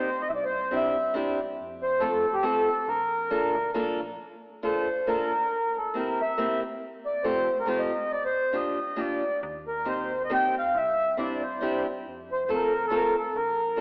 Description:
musette; 138 BPM; 3/4; swing 54% on 8ths; Bb major; A4 = 435 Hz
mellow accordion; melody; 0.0-13.8 s; G4 to G5; -29 LUFS; equal
fingerpicked old ladder-braced acoustic guitar; accompaniment; 0.0-13.8 s; A3 to A4; -32 LUFS; equal
metallic FM bass; bass; 0.3-4.2, 9.4-13.8 s; Bb1 to F2; -50 LUFS; equal; transformer saturation
wet concert hall reverb, RT60 2.3 s; worn, warbling old tape, cassette tape, warbly pitch drift, AM radio sound; -27 LUFS; mono
0.0-4.2 A section; 4.2-13.8 A section
0.3 Cadd9; 1.6 F; 2.9 Bbmaj7; 5.5 C7; 6.8 Fadd9; 8.1 Gm7; 9.4 Eb6; 10.8 Cadd9; 12.1 F

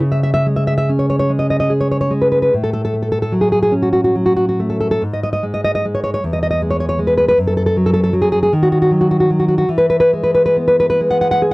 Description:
romantic piece for solo classical guitar; 43-53 BPM (dotted quarters); 6/8; rubato; A4 = 440 Hz
nylon-string guitar; solo; 0.0-11.5 s; E2 to F#5; -13 LUFS; equal
light reverb; dry, close 1970s-style studio recording; -13 LUFS; side -22 dB against mid
0.0-11.5 A section
0.0 C#5; 2.5 F#m/A; 5.0 N.C.; 6.2 Emaj7; 7.4 N.C.; 8.5 D#m; 9.7 E

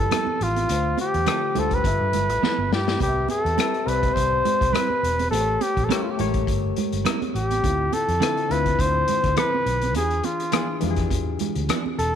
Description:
lush 1970s-style soul; 104 BPM; 4/4; swing 54% on 16ths; C major; A4 = 436 Hz
warm flugelhorn; melody; 0.0-12.2 s; F4 to C5; -23 LUFS; equal
barky reed electric piano; accompaniment; 0.0-12.2 s; D3 to E5; -29 LUFS; left 11 dB
vintage muted fingered electric bass; bass; 0.0-12.2 s; E1 to G2; -26 LUFS; right 1 dB
semi-hollow electric guitar; riff; 0.1-11.8 s; F3 to B4; -31 LUFS; right 10 dB
vintage drum kit; drums; 0.1-12.1 s; hi-hat, kick drum, rim click, snare drum; -28 LUFS; left 2 dB
congas; percussion; 0.1-12.0 s; -31 LUFS; right 12 dB
light reverb; 1960s-style stereo with parts hard left and right; -20 LUFS; side -9 dB against mid
0.0-3.0 A section; 3.0-12.2 A section
drum fill 2.4-3.0
0.0 Fmaj9#11; 0.7 Dm7; 1.8 G13; 3.0 Cmaj7; 5.3 A7b9; 7.6 Dm9; 10.0 E7b9

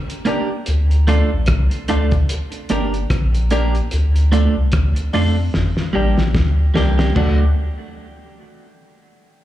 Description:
roots reggae; 74 BPM; 4/4; swing 57% on 16ths; D minor; A4 = 440 Hz
cloth-damped thuddy drum kit; drums; 0.1-7.4 s; crash cymbal, hi-hat, kick drum, rim click, snare drum, toms; -22 LUFS; left 1 dB; slapback echo
clean electric guitar; accompaniment; 0.2-7.4 s; F#3 to Bb4; -22 LUFS; right 4 dB; dub echo, slapback echo
warm upright piano; stabs; 0.3-7.5 s; D4 to D5; -28 LUFS; left 6 dB; slapback echo
warm sub bass; bass; 0.7-7.5 s; G1 to F2; -16 LUFS; equal
small room ambience; live gig heard through the venue's PA, club reverb; -15 LUFS; side -13 dB against mid
0.0-7.2 A section; 7.2-9.4 B section
drum fill 5.5-7.2
0.0 Gm; 0.7 Dm; 2.3 Gm; 3.9 Dm; 5.5 Gm; 7.2 D

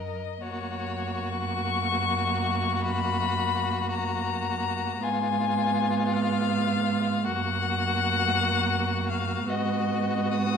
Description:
classical, slow romantic movement for string quartet; 43-55 BPM (dotted quarters); 12/8; rubato; F# major; A4 = 441 Hz
rich violin; melody; 0.0-10.6 s; C#5 to D#6; -29 LUFS; left 9 dB
rich violin; second line; 0.0-10.6 s; E#4 to A#4; -31 LUFS; left 3 dB
rich cello; bass; 0.0-10.6 s; F#2 to G#2; -29 LUFS; right 4 dB
warm viola; accompaniment; 0.4-10.6 s; A#3 to B3; -32 LUFS; right 4 dB
moderate recital hall reverb, RT60 1.4 s; -24 LUFS; side -7 dB against mid
0.4-10.6 A section
0.4 F#; 5.0 G#m6; 7.3 F#; 9.5 G#m7

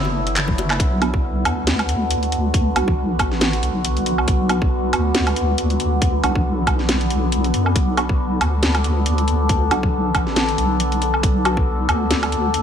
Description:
deep dubstep; 138 BPM; 4/4; swing 56% on 16ths, half-time; B minor; A4 = 439 Hz
overtone-sweeping drone; sustained chords; 0.0-12.6 s; D3 to A4; -22 LUFS; left 1 dB; chorus, built-in reverb
deep soft wobble bass; bass; 0.0-12.6 s; F#1 to F#2; -21 LUFS; equal; chorus
bongos and congas; percussion; 0.0-0.7 s; -28 LUFS; left 4 dB; dub echo
flickering grainy texture; texture; 0.0-0.8 s; C#5; -40 LUFS; right 3 dB
garage drum kit; drums; 0.3-12.6 s; handclaps, hi-hat, snare drum, woodblock; -22 LUFS; right 1 dB; small room ambience
electronic kick drum; drums; 0.5-11.6 s; -20 LUFS; equal; small room ambience
filtered dub chord stab; stabs; 1.0-11.6 s; B3 to F#4; -28 LUFS; right 2 dB; phaser, wide subtle chorus, dub echo
light reverb, digital ambience; -16 LUFS; side -8 dB against mid
0.8-12.6 A section
drum fill 0.4-0.8; drop 0.8-12.6
0.0 Bm

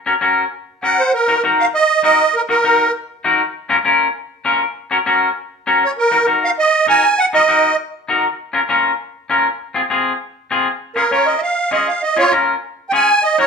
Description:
latin; 198 BPM; 4/4; straight; A4 = 440 Hz
clean electric guitar; accompaniment; 0.1-13.4 s; C4 to Bb4; -16 LUFS; left 3 dB
musette accordion; melody; 0.8-2.9, 5.8-7.8, 11.0-13.5 s; F4 to Ab5; -14 LUFS; right 3 dB
wet studio reverb, RT60 0.8 s; minimal, uncompressed stereo recording; -13 LUFS; side -5 dB against mid
0.0-1.1 A section; 1.1-10.8 B section; 10.8-13.5 C section
accordion solo 10.8-13.5
0.0 Gb; 1.1 Ebm; 3.6 Bbm; 4.8 Gb; 6.0 Ebm; 8.4 Bbm; 9.6 Fm; 10.8 Db

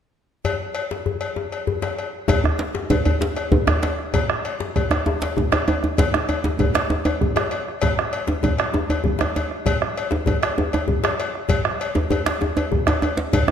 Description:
west african traditional, West African drum ensemble; 130 BPM (dotted quarters); 12/8; straight
cowbell; percussion; 0.4-13.5 s; -27 LUFS; left 4 dB
djembe; percussion; 0.4-13.5 s; -26 LUFS; left 6 dB
bombo; percussion; 2.3-13.5 s; -23 LUFS; right 3 dB
djembe; percussion; 2.3-13.5 s; -22 LUFS; right 1 dB
moderate scoring stage reverb, RT60 1.5 s; lossy compression artefacts; -19 LUFS; side -8 dB against mid
0.4-2.3 A section; 2.3-13.5 B section

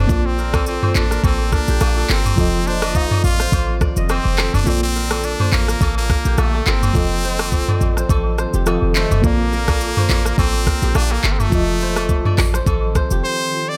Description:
afrobeats; 105 BPM; 4/4; swing 55% on 16ths; Bb major; A4 = 440 Hz
brilliant trumpet; melody; 0.0-13.8 s; A3 to D5; -25 LUFS; equal
bell-like FM electric piano; accompaniment; 0.0-13.8 s; F3 to Eb5; -28 LUFS; equal; chorus, tremolo
ethereal airy pad; sustained chords; 0.0-13.8 s; D3 to A4; -33 LUFS; equal
kora; riff; 0.0-13.8 s; G4 to Eb5; -30 LUFS; equal; tape echo
short 808-style bass; bass; 0.0-13.2 s; F1 to Bb1; -22 LUFS; equal
afro-pop drum kit; drums; 0.1-13.2 s; handclaps, hi-hat, kick drum, rim click, shaker, toms; -22 LUFS; equal
agogo bells and woodblock; percussion; 0.5-12.8 s; -33 LUFS; equal
digital ambience; -18 LUFS; mono
0.0-13.8 A section
kick muted 4.7-5.8; break 13.2-13.8
0.1 Bbmaj7; 2.4 F7; 4.7 Bbmaj7; 7.0 F7; 9.2 Bbmaj7; 11.5 F7

